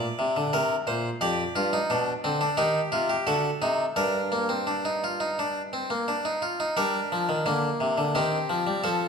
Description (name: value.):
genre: classical, baroque-style 3-part fugue for harpsichord.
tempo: 87 BPM.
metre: 4/4.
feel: straight.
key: G minor.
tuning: A4 = 440 Hz.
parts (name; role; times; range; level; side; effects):
harpsichord; solo; 0.0-9.1 s; F2 to D5; -24 LUFS; equal; none.
room: wet recital hall reverb, RT60 1.5 s.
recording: minimal, uncompressed stereo recording.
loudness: -24 LUFS.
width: side -6 dB against mid.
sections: 0.0-6.8 A section; 6.8-9.1 B section.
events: none.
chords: 0.0 Bbadd9; 1.2 G7/F; 2.6 Cm/Eb; 3.3 D7; 4.0 Gm; 8.2 Cm/Eb.